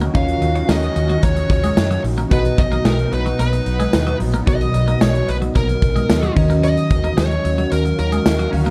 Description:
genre	1980s-style pop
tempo	111 BPM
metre	4/4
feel	straight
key	Eb minor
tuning	A4 = 440 Hz
part	glassy digital keys	accompaniment	0.0-8.7 s	B2 to A#5	-24 LUFS	equal	chorus
part	sweeping resonant pad	sustained chords	0.0-8.7 s	Eb3 to F5	-30 LUFS	equal	chorus
part	twelve-string electric guitar	riff	0.0-8.7 s	Gb3 to Eb4	-29 LUFS	equal	lush chorus
part	vintage muted fingered electric bass	bass	0.0-8.7 s	Bb1 to Gb2	-23 LUFS	equal	none
part	big rock drum kit	drums	0.0-8.7 s	crash cymbal, hi-hat, kick drum, snare drum, tambourine	-22 LUFS	equal	none
part	smooth overdriven lead guitar	melody	0.2-8.5 s	A#4 to F5	-26 LUFS	equal	none
part	tambourine	percussion	0.7-8.4 s	none	-43 LUFS	equal	none
room	moderate small room ambience, RT60 0.5 s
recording	dark, warm production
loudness	-17 LUFS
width	mono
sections	0.0-8.7 A section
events	none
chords	0.0 Ebm7; 2.3 Bmaj7; 6.4 Ebm7

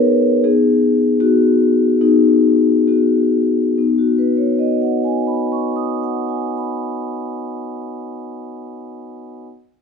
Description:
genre	classical, contemporary piece for solo vibraphone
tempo	64-78 BPM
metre	4/4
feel	rubato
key	B major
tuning	A4 = 440 Hz
part	vibraphone with soft mallets	solo	0.0-9.5 s	B3 to D#6	-15 LUFS	left 2 dB	none
room	moderate studio reverb, RT60 0.9 s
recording	minimal, uncompressed stereo recording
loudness	-14 LUFS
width	side -5 dB against mid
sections	0.0-3.8 A section; 3.8-7.3 B section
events	slowing down 0.0-3.8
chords	0.0 B6; 3.8 B69

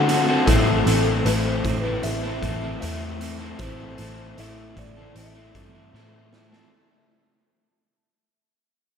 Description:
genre	rock, shoegaze and dream pop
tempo	77 BPM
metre	4/4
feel	straight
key	unclear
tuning	A4 = 439 Hz
part	electric guitar through a small old amp	melody	0.0-6.3 s	A4 to F#5	-30 LUFS	left 4 dB	lush chorus, diffuse ambient delay
part	crunchy overdriven guitar	riff	0.0-6.7 s	A2 to A4	-26 LUFS	left 8 dB	lush chorus
part	overdriven semi-hollow guitar	riff	0.0-6.7 s	A2 to F#4	-27 LUFS	right 6 dB	reverse reverb
part	vintage muted picked electric bass	bass	0.0-6.6 s	A1 to D3	-27 LUFS	equal	none
part	raw garage drum kit	drums	0.1-6.7 s	hi-hat, kick drum, snare drum	-27 LUFS	equal	none
room	moderate lush hall reverb, RT60 2.9 s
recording	dreamy mix soaked in reverb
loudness	-19 LUFS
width	side -7 dB against mid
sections	0.0-6.7 A section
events	fade-out 0.0-6.7; drum fill 5.9-6.7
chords	0.5 Am

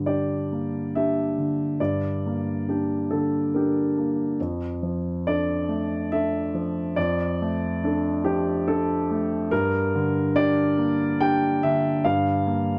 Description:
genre	neoclassical minimalist piano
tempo	70 BPM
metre	3/4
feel	rubato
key	unclear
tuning	A4 = 439 Hz
part	warm concert grand piano	solo	0.0-12.8 s	F2 to G5	-24 LUFS	equal	none
room	moderate studio reverb, RT60 0.5 s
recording	none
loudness	-24 LUFS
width	mono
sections	0.0-12.8 A section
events	none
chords	0.0 Gm; 4.4 Dm/F; 9.5 Gm

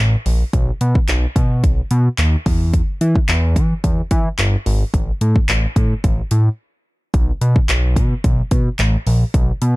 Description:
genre	dance-pop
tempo	109 BPM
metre	4/4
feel	straight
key	unclear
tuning	A4 = 439 Hz
part	fat analog bass	bass	0.0-9.8 s	G1 to E3	-16 LUFS	equal	sidechain pumping
part	deep house drum kit	drums	0.3-9.8 s	handclaps, hi-hat, kick drum	-18 LUFS	equal	none
room	digital ambience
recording	dark, warm production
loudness	-14 LUFS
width	side -21 dB against mid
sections	0.0-7.1 A section; 7.1-9.8 A section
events	drop 0.0-7.1, 7.1-9.8; break 6.6-7.1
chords	none

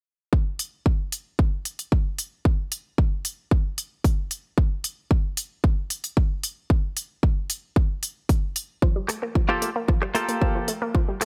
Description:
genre	nu-disco, nu disco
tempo	113 BPM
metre	4/4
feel	straight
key	G minor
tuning	A4 = 440 Hz
part	electronic kick drum	drums	0.3-11.1 s	none	-23 LUFS	equal	small room ambience
part	electronic hi-hat	drums	0.6-11.2 s	none	-30 LUFS	equal	small room ambience
part	analog pluck	arpeggios	8.8-11.2 s	F3 to Bb3	-32 LUFS	equal	chorus, sidechain pumping, digital delay
part	direct-recorded clean electric guitar	riff	9.1-11.2 s	Bb3 to A4	-28 LUFS	equal	subtle chorus, dub echo
room	little or no reverb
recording	none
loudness	-25 LUFS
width	mono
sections	0.3-11.2 A section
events	none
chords	0.3 N.C.; 8.8 Gm9

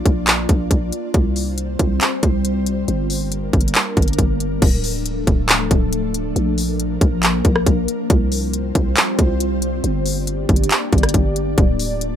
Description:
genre	hip hop, trap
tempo	138 BPM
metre	4/4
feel	half-time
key	D minor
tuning	A4 = 441 Hz
part	ethereal airy pad	sustained chords	0.0-12.2 s	F3 to D5	-23 LUFS	left 1 dB	ensemble chorus, built-in reverb
part	growling 808-style bass	bass	0.0-12.2 s	D1 to C2	-21 LUFS	equal	none
part	trap drum kit	drums	0.1-12.1 s	crash cymbal, handclaps, hi-hat, kick drum, rim click	-17 LUFS	equal	none
room	little or no reverb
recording	rough home demo mix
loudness	-16 LUFS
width	side -9 dB against mid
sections	0.0-4.6 A section; 4.6-12.2 B section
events	none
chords	0.0 Bb; 1.1 Csus4; 2.9 Gm; 4.6 Dm; 6.4 Bb; 8.1 Csus4; 9.8 Gm; 11.6 Dm

